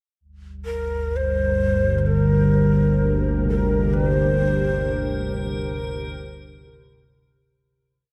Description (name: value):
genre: dark ambient drone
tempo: 65 BPM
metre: 4/4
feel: straight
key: unclear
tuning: A4 = 442 Hz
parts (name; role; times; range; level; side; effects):
- dark analog pad; sustained chords; 1.2-7.6 s; G3 to Bb4; -28 LUFS; equal; chorus
- analog drone; drone; 0.6-7.7 s; G1 to D2; -24 LUFS; equal; chorus
- breathy mellow shakuhachi; melody; 0.7-6.6 s; Bb4 to C5; -28 LUFS; equal; diffuse ambient delay
- bronze singing bowl; arpeggios; 3.4-8.1 s; C3 to G4; -36 LUFS; equal; none
- icy glass pad; texture; 4.2-7.6 s; Bb4; -40 LUFS; equal; chorus, built-in reverb
room: moderate huge ambient reverb, RT60 8.6 s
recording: in a vast, echoing space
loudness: -21 LUFS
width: mono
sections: 0.2-7.6 A section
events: filter sweep on synth drone 0.2-7.6; fade-out 3.9-7.6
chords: 0.2 Gm